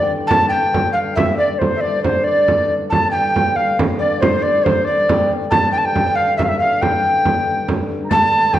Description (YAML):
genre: medieval dance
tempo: 92 BPM (dotted quarters)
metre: 6/8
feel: straight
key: unclear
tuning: A4 = 442 Hz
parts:
  - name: tenor recorder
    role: melody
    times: 0.0-8.6 s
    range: C5 to A5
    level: -16 LUFS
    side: equal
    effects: none
  - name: bright shawm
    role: second line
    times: 0.0-8.6 s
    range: C5 to A5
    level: -25 LUFS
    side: left 4 dB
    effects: none
  - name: concert harp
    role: second line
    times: 0.0-8.6 s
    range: C5 to Bb5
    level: -26 LUFS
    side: right 2 dB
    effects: none
  - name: pedal harmonium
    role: drone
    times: 0.0-8.6 s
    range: G2 to D3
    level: -26 LUFS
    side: left 2 dB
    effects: none
  - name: frame drum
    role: percussion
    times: 0.3-8.6 s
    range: none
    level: -20 LUFS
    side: right 2 dB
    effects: none
  - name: riq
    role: percussion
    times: 8.1-8.4 s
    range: none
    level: -26 LUFS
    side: left 5 dB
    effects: none
room: wet recital hall reverb, RT60 1.6 s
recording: worn, warbling old tape, cassette tape, warbly pitch drift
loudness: -14 LUFS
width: side -12 dB against mid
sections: 0.0-8.1 A section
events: none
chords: none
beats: | 0.30 0.96 | 1.61 2.27 | 2.92 3.57 | 4.22 4.87 | 5.52 6.17 | 6.82 7.46 | 8.11